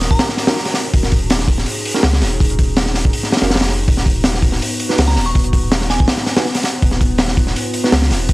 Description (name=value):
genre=drum and bass, jungle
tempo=163 BPM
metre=4/4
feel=straight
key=Eb minor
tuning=A4 = 441 Hz
part: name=warbly tape-like pad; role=sustained chords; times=0.0-8.3 s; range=B3 to B4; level=-25 LUFS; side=left 2 dB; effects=chorus, built-in reverb, vintage 12-bit sampler grit
part: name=saturated sub bass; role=bass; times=0.0-8.3 s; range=Eb1 to Db2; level=-19 LUFS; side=equal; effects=tube saturation
part: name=crunchy breakbeat drum kit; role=drums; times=0.0-8.3 s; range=hi-hat, kick drum, snare drum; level=-15 LUFS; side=equal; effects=none
part: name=glassy synth bell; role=melody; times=0.1-0.6, 5.1-6.4 s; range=Ab5 to Db6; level=-27 LUFS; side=right 2 dB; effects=chorus, tremolo, dub echo
part: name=tine electric piano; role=stabs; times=0.5-7.9 s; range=B3 to B4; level=-24 LUFS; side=right 3 dB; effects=medium stereo tremolo, dub echo
room=small room ambience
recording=dry, gritty hardware recording, transformer saturation, vinyl crackle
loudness=-13 LUFS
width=side -20 dB against mid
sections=0.0-8.3 A section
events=none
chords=0.0 Ebm7; 3.9 B/D#